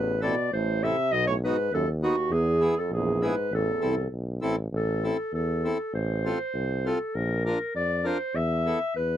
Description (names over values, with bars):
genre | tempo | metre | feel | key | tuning
alpine folk, alpine dance band | 100 BPM | 2/4 | straight | A harmonic minor | A4 = 440 Hz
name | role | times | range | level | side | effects
warm clarinet | melody | 0.0-9.2 s | F#4 to E5 | -27 LUFS | left 1 dB | none
clear euphonium | second line | 0.0-4.1 s | D#2 to C3 | -32 LUFS | right 5 dB | none
clear tuba | bass | 0.0-9.2 s | A1 to F2 | -29 LUFS | equal | none
accordion | accompaniment | 0.2-8.8 s | B3 to Bb4 | -28 LUFS | left 1 dB | none
room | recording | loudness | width
light reverb | dry, close 1970s-style studio recording | -24 LUFS | side -11 dB against mid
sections
0.0-4.7 A section; 4.7-9.2 A section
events
none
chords
0.0 Am; 1.1 B; 2.3 E; 3.5 Am; 5.9 F/A; 7.1 Bb; 8.3 Esus4